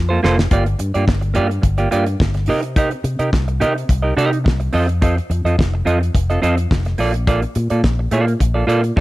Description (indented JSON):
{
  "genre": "disco",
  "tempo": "106 BPM",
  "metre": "4/4",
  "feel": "straight",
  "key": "G minor",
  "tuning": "A4 = 438 Hz",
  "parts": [
    { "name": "fingered electric bass with an envelope filter", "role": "bass", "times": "0.0-9.0 s", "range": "F1 to C3", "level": "-18 LUFS", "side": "left 1 dB", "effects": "none" },
    { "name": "semi-hollow electric guitar", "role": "accompaniment", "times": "0.1-9.0 s", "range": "Bb3 to Eb5", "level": "-19 LUFS", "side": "right 2 dB", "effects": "none" },
    { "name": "damped 70s drum kit", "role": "drums", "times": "0.2-9.0 s", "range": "hi-hat, kick drum, snare drum", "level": "-19 LUFS", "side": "equal", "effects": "none" }
  ],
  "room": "small room ambience",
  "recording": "none",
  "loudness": "-15 LUFS",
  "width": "side -18 dB against mid",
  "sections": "0.5-9.0 A section",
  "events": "drum fill 0.0-0.5",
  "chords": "0.0 Gm11 (rootless); 0.5 Gm7; 2.5 Cm7; 4.7 F7; 7.0 Bbmaj7"
}